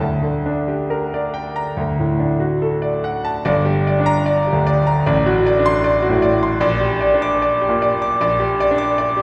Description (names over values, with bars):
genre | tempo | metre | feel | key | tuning
classical, romantic character piece for solo piano | 66-79 BPM | 4/4 | rubato | G minor | A4 = 440 Hz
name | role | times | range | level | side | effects
bright concert grand piano | solo | 0.0-9.2 s | G1 to D6 | -18 LUFS | equal | none
room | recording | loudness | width
wet scoring stage reverb, RT60 1.9 s | recorded in a church or concert hall | -18 LUFS | mono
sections
0.0-3.5 A section; 3.5-9.2 B section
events
none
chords
0.0 Gm/D; 1.8 D; 3.5 Gm; 5.1 D7/A; 6.6 Gm/Bb